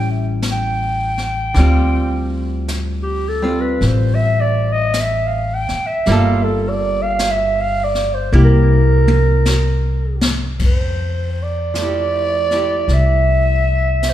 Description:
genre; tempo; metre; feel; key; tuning
jazz ballad; 53 BPM; 4/4; swing 68% on 8ths; F major; A4 = 438 Hz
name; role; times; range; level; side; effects
growling clarinet; melody; 0.0-14.1 s; G4 to G5; -19 LUFS; right 2 dB; none
archtop guitar, miked and amplified; accompaniment; 0.0-14.1 s; D3 to A4; -23 LUFS; right 1 dB; none
upright bass; bass; 0.0-14.1 s; G1 to F2; -17 LUFS; left 1 dB; none
jazz brush drum kit; drums; 0.4-14.1 s; brushed snare drum, hi-hat, kick drum, ride cymbal, snare drum, toms; -22 LUFS; left 1 dB; none
room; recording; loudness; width
moderate recital hall reverb, RT60 1.7 s; recorded in a church or concert hall; -14 LUFS; side -12 dB against mid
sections
0.0-10.6 A section; 10.6-14.1 B section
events
clarinet solo 0.0-10.6; drum fill 8.3-10.6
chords
0.0 A7; 1.5 Dm7; 6.1 Gm9; 8.3 C7; 10.6 Fmaj9

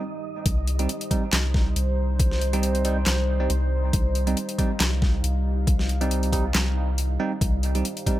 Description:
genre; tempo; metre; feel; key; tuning
deep dubstep; 138 BPM; 4/4; swing 54% on 16ths, half-time; C minor; A4 = 440 Hz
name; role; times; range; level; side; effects
deep dark ambient pad; sustained chords; 0.0-8.2 s; G3 to F5; -32 LUFS; right 1 dB; chorus, built-in reverb
wind-like tuned noise texture; texture; 0.0-0.5 s; Eb5; -40 LUFS; right 8 dB; built-in reverb
soft dub sub bass; bass; 0.5-7.8 s; C2; -24 LUFS; equal; tube saturation
dubstep drum kit; drums; 0.5-8.2 s; handclaps, hi-hat, snare drum; -27 LUFS; left 1 dB; overdrive
electronic kick drum; drums; 0.5-8.2 s; none; -23 LUFS; equal; overdrive
bell-like tine electric piano; stabs; 0.8-8.2 s; G3 to Eb4; -29 LUFS; right 3 dB; phaser, dub echo
room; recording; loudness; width
light reverb, digital ambience; none; -21 LUFS; side -14 dB against mid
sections
0.5-8.2 A section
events
drop 0.5-8.2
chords
0.5 Cm

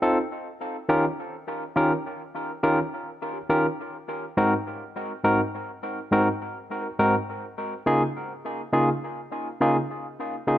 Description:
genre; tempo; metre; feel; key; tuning
reggae; 69 BPM; 4/4; swing 60% on 16ths; Db major; A4 = 440 Hz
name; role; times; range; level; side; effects
barky tine electric piano; solo; 0.0-10.6 s; Ab2 to Bb4; -23 LUFS; equal; dub echo
room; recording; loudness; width
moderate echo chamber reverb, RT60 1.3 s; none; -24 LUFS; side -12 dB against mid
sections
0.0-10.6 A section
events
none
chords
0.5 Eb7; 3.9 Ab7; 7.4 Db69

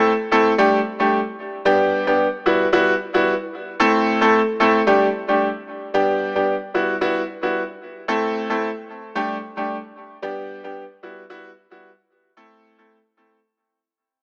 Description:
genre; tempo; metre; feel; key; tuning
afrobeats; 112 BPM; 4/4; swing 55% on 16ths; D mixolydian; A4 = 440 Hz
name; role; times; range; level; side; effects
bright concert grand piano; solo; 0.0-13.4 s; G3 to A4; -20 LUFS; equal; tape echo
room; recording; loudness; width
light reverb, small room ambience; small speaker sound; -20 LUFS; mono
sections
0.0-4.9 A section; 4.9-13.4 B section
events
fade-out 4.9-13.4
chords
0.0 Am; 0.6 Dsus4; 1.7 G; 2.5 Emadd9; 3.8 Am; 4.9 Dsus4; 5.9 G; 6.7 Emadd9; 8.1 Am; 9.2 Dsus4; 10.2 G; 11.0 Emadd9; 12.4 Am

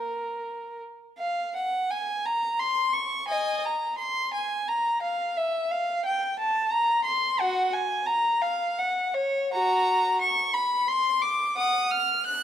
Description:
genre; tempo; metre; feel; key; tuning
classical, baroque-style suite movement for unaccompanied violin; 87 BPM; 3/4; rubato; Bb minor; A4 = 438 Hz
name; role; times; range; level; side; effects
rich violin; solo; 0.0-12.4 s; Gb4 to Gb6; -24 LUFS; equal; none
room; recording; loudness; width
moderate recital hall reverb, RT60 1.6 s; none; -24 LUFS; side -10 dB against mid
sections
0.0-1.2 A section; 1.2-12.4 B section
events
none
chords
none

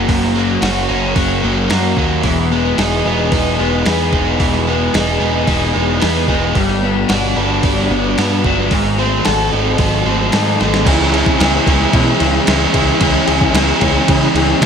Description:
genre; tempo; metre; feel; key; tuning
rock, shoegaze and dream pop; 111 BPM; 4/4; straight; unclear; A4 = 440 Hz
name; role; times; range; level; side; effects
electric guitar through a small old amp; arpeggios; 0.0-14.7 s; D#3 to G#4; -22 LUFS; right 1 dB; wide subtle chorus, slapback echo
biting overdriven guitar; riff; 0.0-14.7 s; F#2 to A4; -18 LUFS; right 11 dB; reverse reverb
overdriven electric guitar; riff; 0.0-14.7 s; E2 to A4; -18 LUFS; left 12 dB; lush chorus
growling picked electric bass; bass; 0.0-14.7 s; E1 to C#3; -19 LUFS; equal; overdrive
crisp 8-bit digital drum machine; drums; 0.1-14.7 s; crash cymbal, hi-hat, kick drum, snare drum; -18 LUFS; equal; none
room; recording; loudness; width
light reverb, digital ambience; none; -12 LUFS; side -7 dB against mid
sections
0.0-10.9 A section; 10.9-14.7 B section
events
drum fill 10.6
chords
0.0 F#; 2.2 Emaj7; 6.6 Gmaj7; 8.7 G#7b9; 10.9 C#m7

